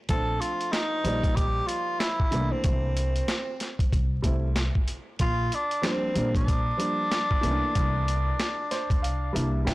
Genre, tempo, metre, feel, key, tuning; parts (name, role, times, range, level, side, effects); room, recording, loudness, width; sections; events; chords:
hip hop, jazz-hop; 94 BPM; 4/4; swing 61% on 16ths; A4 = 440 Hz
breathy tenor saxophone; melody; 0.1-9.6 s; C4 to A4; -28 LUFS; equal; slapback echo
warm upright piano; accompaniment; 0.1-9.7 s; E3 to G5; -32 LUFS; right 1 dB
upright bass; bass; 0.1-9.7 s; Bb1 to C3; -28 LUFS; equal; tube saturation
boom bap sampler-style drum kit; drums; 0.1-9.7 s; hi-hat, kick drum, snare drum; -27 LUFS; equal
small room ambience; blown-out, overdriven recording, vinyl crackle, overdrive; -24 LUFS; side -19 dB against mid
0.0-9.7 A section
upright piano fill 8.4-9.7; kick muted 9.0-9.7
0.1 Bbmaj9; 1.1 Bb6; 2.3 C13; 3.9 C6; 5.2 Bb; 7.4 C13; 9.0 C9